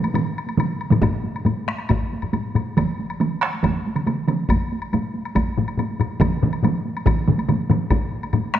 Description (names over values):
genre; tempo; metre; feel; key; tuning
japanese traditional, taiko drum ensemble; 139 BPM; 4/4; straight; none; none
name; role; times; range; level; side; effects
taiko ensemble; percussion; 0.0-8.6 s; none; -26 LUFS; right 2 dB; none
woodblock; percussion; 0.0-8.4 s; none; -32 LUFS; left 4 dB; none
taiko ensemble; percussion; 0.1-8.6 s; none; -23 LUFS; left 4 dB; none
taiko ensemble; percussion; 0.1-7.8 s; none; -22 LUFS; right 4 dB; none
taiko ensemble; percussion; 1.0-8.0 s; none; -23 LUFS; equal; none
room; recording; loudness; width
wet recital hall reverb, RT60 1.7 s; none; -19 LUFS; side -11 dB against mid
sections
0.0-1.0 A section; 1.0-8.6 B section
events
speeding up 0.0-8.6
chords
none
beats
0.15 0.59 | 1.03 1.47 1.90 2.34 | 2.77 3.21 3.64 4.07 | 4.50 4.93 5.36 5.79 | 6.22 6.64 7.07 7.49 | 7.92 8.34